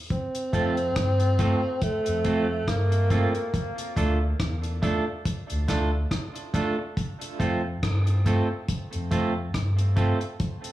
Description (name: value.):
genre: dub reggae.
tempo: 70 BPM.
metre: 4/4.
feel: swing 56% on 16ths.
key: F major.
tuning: A4 = 439 Hz.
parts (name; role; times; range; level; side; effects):
breathy tenor saxophone; melody; 0.1-3.5 s; A3 to C4; -28 LUFS; equal; tape echo.
deep reggae drum kit; drums; 0.1-10.7 s; hi-hat, kick drum, rim click; -29 LUFS; equal; none.
semi-hollow electric guitar; accompaniment; 0.5-10.2 s; A3 to A4; -29 LUFS; right 3 dB; tape echo.
soft dub sub bass; bass; 0.5-10.1 s; D2 to G2; -25 LUFS; equal; none.
room: moderate spring reverb, RT60 2.0 s.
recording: studio reverb.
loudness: -23 LUFS.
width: side -14 dB against mid.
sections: 0.1-10.7 A section.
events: none.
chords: 0.1 F; 3.5 Dm; 7.0 F.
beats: | 0.10 0.96 1.82 2.68 | 3.54 4.39 5.25 6.11 | 6.97 7.83 8.68 9.54 | 10.40.